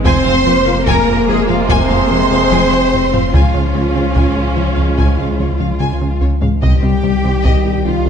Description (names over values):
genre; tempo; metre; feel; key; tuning
cinematic, hybrid orchestral and electronic film score; 73 BPM; 4/4; straight; unclear; A4 = 442 Hz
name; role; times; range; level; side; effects
warm symphonic violin section; melody; 0.0-8.1 s; G4 to Ab5; -25 LUFS; left 5 dB; none
warm symphonic viola section; accompaniment; 0.0-6.2 s; Ab3 to Db4; -21 LUFS; equal; none
mellow French horn section; sustained chords; 0.0-8.1 s; F3 to C4; -22 LUFS; left 4 dB; none
tight sequenced synth; arpeggios; 0.0-8.1 s; C3 to F4; -24 LUFS; left 6 dB; none
saturated sub bass; bass; 0.0-8.1 s; F1 to Db2; -19 LUFS; left 1 dB; none
warm symphonic violin section; second line; 0.1-8.1 s; F5 to C6; -24 LUFS; left 2 dB; none
warm trombone section; sustained chords; 0.1-8.1 s; C3 to Ab3; -23 LUFS; right 2 dB; none
plucky analog bass; riff; 0.1-8.1 s; C2 to F3; -21 LUFS; right 2 dB; none
rich symphonic double bass section; bass; 0.1-8.1 s; F1 to Db2; -22 LUFS; right 3 dB; none
warm symphonic cello section; bass; 0.1-8.1 s; F4 to C5; -19 LUFS; right 3 dB; none
solo taiko drums; drums; 0.1-8.1 s; none; -18 LUFS; left 1 dB; none
room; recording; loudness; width
moderate scoring stage reverb, RT60 2.0 s; dark, warm production, nothing above 11.0 kHz; -11 LUFS; side -7 dB against mid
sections
0.0-8.1 A section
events
none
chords
0.1 Fm; 3.3 Db; 6.6 Cm